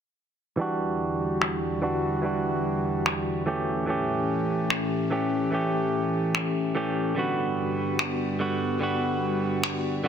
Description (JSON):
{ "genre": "future bass", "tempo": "146 BPM", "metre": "4/4", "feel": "half-time", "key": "unclear", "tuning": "A4 = 441 Hz", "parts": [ { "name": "direct-recorded clean electric guitar", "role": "accompaniment", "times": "0.6-10.1 s", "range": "D3 to G4", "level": "-26 LUFS", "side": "right 2 dB", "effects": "low-pass filter, digital delay" }, { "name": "airy breathy pad", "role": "sustained chords", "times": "0.8-10.1 s", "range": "E2 to G4", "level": "-30 LUFS", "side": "left 2 dB", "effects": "chorus" }, { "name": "electronic finger snaps", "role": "drums", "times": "1.4-9.7 s", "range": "none", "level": "-28 LUFS", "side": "left 1 dB", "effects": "soft clipping on snare, low-pass filter on snare, low-pass filter on room" } ], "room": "moderate lush hall reverb, RT60 2.2 s", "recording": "dense, heavily limited modern master", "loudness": "-24 LUFS", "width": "side -8 dB against mid", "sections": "0.6-10.1 A section", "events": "filter sweep on drum 0.6-10.1; filter sweep on clean electric guitar 0.6-10.1", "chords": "0.6 Em9; 3.7 A7; 7.2 Gmaj7" }